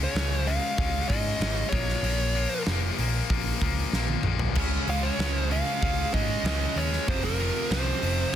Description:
hard rock; 96 BPM; 4/4; straight; A4 = 443 Hz
dark smooth lead guitar; melody; 0.0-8.4 s; Bb4 to F5; -30 LUFS; right 1 dB; overdrive, digital delay
high-gain distorted guitar; riff; 0.0-8.4 s; F2 to Db4; -31 LUFS; left 10 dB; distortion
overdriven picked electric bass; bass; 0.0-8.4 s; F1 to Ab2; -29 LUFS; equal
big rock drum kit; drums; 0.2-8.2 s; crash cymbal, hi-hat, kick drum, snare drum, toms; -29 LUFS; equal
high-gain distorted guitar; riff; 4.6-8.3 s; F2 to Db4; -33 LUFS; right 15 dB; distortion
studio reverb; dense, heavily limited modern master; -24 LUFS; side -10 dB against mid
0.0-8.4 A section
drum fill 3.9-4.6
0.0 Db; 1.7 Bbm; 4.6 Db; 7.1 F5
0.16 0.79 1.42 | 2.04 2.67 3.30 3.93 | 4.56 5.19 5.82 6.45 | 7.07 7.70 8.33

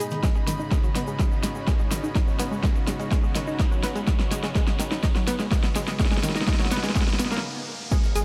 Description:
melodic techno; 125 BPM; 4/4; straight; A4 = 440 Hz
evolving wavetable pad; sustained chords; 0.0-7.4 s; B2 to D#4; -40 LUFS; equal; chorus, built-in reverb, sidechain pumping
unison pluck; arpeggios; 0.0-8.2 s; D#3 to G#4; -33 LUFS; equal; sidechain pumping, digital delay
analog drone; drone; 0.0-8.2 s; G#2 to G#3; -47 LUFS; equal
dusty soul sampler-style drum kit; drums; 0.0-8.2 s; hi-hat, shaker, snare drum; -48 LUFS; equal
egg shaker; percussion; 0.0-8.2 s; -44 LUFS; equal
riser and downlifter; sound effects; 0.4-8.2 s; -41 LUFS; equal
dark chamber string section; texture; 0.0-8.2 s; B3 to B5; -39 LUFS; equal; sidechain pumping
round analog bass; bass; 0.1-8.2 s; G#1 to B1; -33 LUFS; equal; sidechain pumping, high-pass filter
deep house drum kit; drums; 0.2-8.2 s; claves, crash cymbal, hi-hat, snare drum; -31 LUFS; equal; small room ambience
electronic kick drum; drums; 0.2-8.0 s; -26 LUFS; equal; small room ambience
light reverb, digital ambience; -24 LUFS; mono
0.0-7.9 A section
build-up 0.0-7.9; drum fill 0.0-7.4; filter sweep on synth arpeggio sound 0.0-7.9; riser 0.4-7.9; stop 7.4-7.9
0.2 Badd9
| 0.23 0.71 1.20 1.68 | 2.15 2.63 3.12 3.60 | 4.08 4.55 5.04 5.51 | 6.00 6.47 6.96 7.43 | 7.92

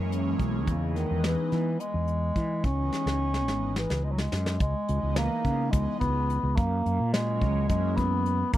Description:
progressive instrumental, band music in an uneven meter; 214 BPM (eighths); 7/8; straight; C# dorian; A4 = 437 Hz
airy breathy pad; accompaniment; 0.0-7.9 s; E3 to D#4; -34 LUFS; equal; chorus, phaser
fretless electric bass; bass; 0.0-8.6 s; G#1 to E3; -28 LUFS; equal
soft brush drum kit; drums; 0.1-8.6 s; hi-hat, kick drum, snare drum; -29 LUFS; equal
warm bass clarinet; melody; 0.7-8.6 s; C#3 to C#4; -29 LUFS; equal; slapback echo
little or no reverb; dry, close 1970s-style studio recording; -25 LUFS; side -13 dB against mid
0.0-4.6 A section; 4.6-8.6 B section
drum fill 2.9-4.6
0.0 F#7; 0.7 Emaj7; 2.6 C#m7; 6.6 F#add9
0.11 0.40 | 0.68 0.96 1.24 1.52 1.80 2.08 2.36 | 2.64 2.92 3.20 3.48 3.76 4.04 4.33 | 4.61 4.89 5.17 5.45 5.73 6.01 6.29 | 6.57 6.85 7.13 7.41 7.69 7.97 8.25 | 8.53

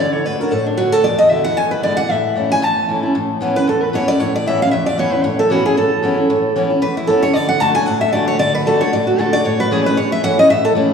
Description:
bluegrass; 228 BPM; 4/4; swing 56% on 8ths; A major; A4 = 440 Hz
picked steel-string acoustic guitar; melody; 0.0-10.7 s; D4 to A5; -16 LUFS; equal
picked steel-string acoustic guitar; accompaniment; 0.0-10.9 s; E2 to F#4; -18 LUFS; left 1 dB
wet church reverb, RT60 3.5 s; recorded in a church or concert hall; -13 LUFS; side -6 dB against mid
0.0-3.1 A section; 3.1-10.9 B section
0.0 D; 1.0 E7sus4; 1.6 E7; 2.1 A; 3.1 Aadd9; 7.4 D; 9.5 A
0.25 0.52 0.78 | 1.04 1.31 1.57 1.83 | 2.10 2.36 2.62 2.89 | 3.15 3.41 3.68 3.94 | 4.20 4.46 4.73 4.99 | 5.25 5.51 5.78 6.04 | 6.30 6.57 6.83 7.09 | 7.35 7.62 7.88 8.14 | 8.40 8.67 8.93 9.19 | 9.45 9.72 9.98 10.24 | 10.50 10.77

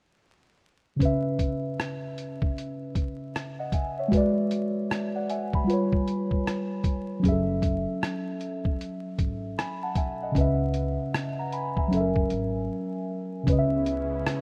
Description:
lo-fi hip hop; 77 BPM; 4/4; swing 64% on 16ths; A4 = 440 Hz
muted felt-like synth keys; accompaniment; 1.0-14.4 s; C#3 to B5; -29 LUFS; equal; chorus, cassette tape, low-pass filter
dusty soul sampler-style drum kit; drums; 1.0-14.4 s; hi-hat, kick drum, rim click; -30 LUFS; equal
upright bass; bass; 7.2-14.2 s; F#1 to C#2; -35 LUFS; equal
lush unison pad; sustained chords; 13.5-14.4 s; C#3 to E4; -40 LUFS; equal; chorus, low-pass filter
light reverb; rough home demo mix, vinyl crackle; -28 LUFS; mono
1.0-13.5 A section
break 12.7-13.5
1.0 C#m7; 4.1 G#m7b5; 5.7 G7#11; 7.2 F#m7; 10.4 C#m7; 11.9 F#7; 13.5 C#m7
| 1.00 1.78 2.56 3.34 | 4.12 4.90 5.68 6.46 | 7.24 8.02 8.79 9.57 | 10.35 11.13 11.91 12.69 | 13.47 14.25

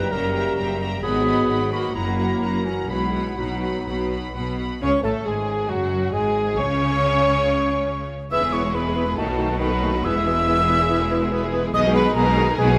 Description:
classical; 122-144 BPM; 4/4; rubato; B major; A4 = 442 Hz
rich symphonic violin section; melody; 0.0-12.8 s; F#4 to B5; -34 LUFS; equal
clear clarinet; second line; 0.0-12.7 s; C#4 to C#5; -31 LUFS; equal
concert flute; second line; 0.0-12.8 s; F#5 to E6; -28 LUFS; equal
rich symphonic violin section; second line; 0.0-12.8 s; F#4 to G5; -34 LUFS; equal
dark bassoon; accompaniment; 0.0-12.7 s; D#3 to C#4; -31 LUFS; equal
clear French horn section; sustained chords; 0.0-12.8 s; F#3 to G#4; -31 LUFS; equal
bright symphonic cello section; bass; 0.0-12.8 s; E2 to C#3; -31 LUFS; equal
clear symphonic double bass section; bass; 0.0-12.8 s; E1 to C#2; -29 LUFS; equal
rich symphonic viola section; accompaniment; 0.1-12.8 s; D#3 to F#4; -31 LUFS; equal
moderate scoring stage reverb, RT60 1.8 s; -22 LUFS; mono
0.0-4.8 A section; 4.8-12.8 B section
0.0 F#7b9; 1.0 G#m7; 1.9 F#7; 2.9 B; 4.8 C#5; 5.7 F#sus2; 6.6 N.C.; 8.3 E; 9.2 B7; 10.0 E; 11.7 G#m/B
0.12 0.57 | 1.03 1.49 1.95 2.42 | 2.89 3.38 3.87 4.35 | 4.82 5.25 5.69 6.13 | 6.58 7.02 7.45 7.89 | 8.32 8.75 9.17 9.60 | 10.05 10.48 10.90 11.32 | 11.74 12.16 12.59

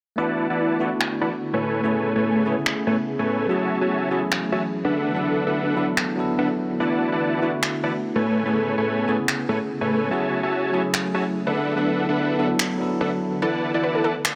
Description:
future bass; 145 BPM; 4/4; swing 56% on 16ths, half-time; A major; A4 = 440 Hz
bell-like tine electric piano; accompaniment; 0.2-13.4 s; F#3 to A4; -29 LUFS; equal; digital delay
ethereal airy pad; sustained chords; 0.9-14.4 s; C#3 to G#4; -33 LUFS; equal; ensemble chorus, built-in reverb
dense compressed supersaw; riff; 0.2-14.1 s; A3 to A5; -25 LUFS; equal; low-pass filter, digital delay
electronic finger snaps; drums; 1.0-14.3 s; -26 LUFS; equal; low-pass filter on snare, low-pass filter on room
unison pluck; arpeggios; 13.4-14.1 s; A4 to D5; -28 LUFS; equal; digital delay
light reverb; -23 LUFS; mono
0.2-14.4 A section
0.2 E7sus4; 1.6 Amaj9; 3.5 F#m9; 4.9 D69; 6.8 E7sus4; 8.2 Amaj9; 10.1 F#m9; 11.6 D69
| 0.18 0.59 1.01 1.42 | 1.83 2.25 2.66 3.08 | 3.49 3.90 4.32 4.73 | 5.14 5.56 5.97 6.39 | 6.80 7.21 7.63 8.04 | 8.46 8.87 9.28 9.70 | 10.11 10.52 10.94 11.35 | 11.77 12.18 12.59 13.01 | 13.42 13.83 14.25

